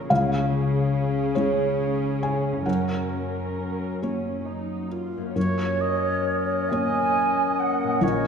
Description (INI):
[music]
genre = cinematic, emotional film score for orchestra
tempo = 45 BPM (dotted quarters)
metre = 6/8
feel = uneven beats, rubato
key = F# major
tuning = A4 = 440 Hz
[part]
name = dark symphonic viola section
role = accompaniment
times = 0.0-5.4 s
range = C#4 to A#4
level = -30 LUFS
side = right 1 dB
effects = none
[part]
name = felt-muted upright piano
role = accompaniment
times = 0.0-8.3 s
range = A#1 to G#5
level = -27 LUFS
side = equal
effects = none
[part]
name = concert harp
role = arpeggios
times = 0.0-8.3 s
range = F#2 to C#5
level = -30 LUFS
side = left 7 dB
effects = none
[part]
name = rich symphonic cello section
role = bass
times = 0.0-5.1 s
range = F#2 to C#3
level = -31 LUFS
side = right 1 dB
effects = none
[part]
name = large flute ensemble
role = second line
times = 5.3-8.3 s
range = C#5 to G#5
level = -25 LUFS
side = right 3 dB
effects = none
[part]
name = mellow clarinet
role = second line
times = 5.3-8.3 s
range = A#4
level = -32 LUFS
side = left 3 dB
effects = none
[part]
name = clear oboe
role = second line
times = 5.4-8.3 s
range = C#5 to D#5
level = -29 LUFS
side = right 1 dB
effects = none
[part]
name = mellow French horn section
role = sustained chords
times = 5.4-8.3 s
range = A#3 to C#4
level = -29 LUFS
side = left 4 dB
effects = none
[sound]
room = wet concert hall reverb, RT60 1.9 s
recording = minimal, uncompressed stereo recording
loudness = -22 LUFS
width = side -6 dB against mid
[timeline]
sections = 0.0-5.4 A section; 5.4-8.3 A section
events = none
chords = 0.1 C#; 2.7 F#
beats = | 0.10 1.36 | 2.67 4.03 | 5.36 6.72 | 8.02